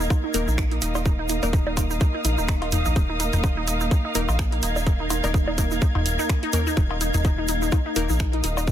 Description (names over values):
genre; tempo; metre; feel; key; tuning
minimal techno; 126 BPM; 4/4; swing 56% on 16ths; unclear; A4 = 441 Hz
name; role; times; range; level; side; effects
resonant blip pluck; riff; 0.0-8.6 s; Bb3 to Eb4; -29 LUFS; right 1 dB; chorus, phaser, sidechain pumping, ping-pong delay
round analog bass; bass; 0.0-8.7 s; Eb1 to Bb1; -26 LUFS; equal; sidechain pumping
egg shaker; percussion; 0.0-8.7 s; none; -34 LUFS; right 5 dB; none
bubbling stepped-filter texture; texture; 0.0-8.7 s; Eb4 to Eb5; -35 LUFS; left 3 dB; chorus, built-in reverb, sidechain pumping
warm symphonic string section; texture; 0.0-8.7 s; Bb3 to Ab6; -30 LUFS; right 1 dB; sidechain pumping
electronic kick drum; drums; 0.1-8.7 s; none; -21 LUFS; equal; overdrive
electronic cowbell, woodblock and toms; percussion; 0.1-8.7 s; none; -27 LUFS; left 1 dB; none
wavetable chord stab; stabs; 0.3-8.1 s; Bb3 to Bb4; -31 LUFS; left 4 dB; tape echo
garage drum kit; drums; 0.3-8.5 s; finger snaps, hi-hat; -30 LUFS; right 2 dB; overdrive, soft clipping on snare
room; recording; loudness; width
little or no reverb; dense, heavily limited modern master; -20 LUFS; side -11 dB against mid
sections
0.0-8.7 A section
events
none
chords
0.0 Eb5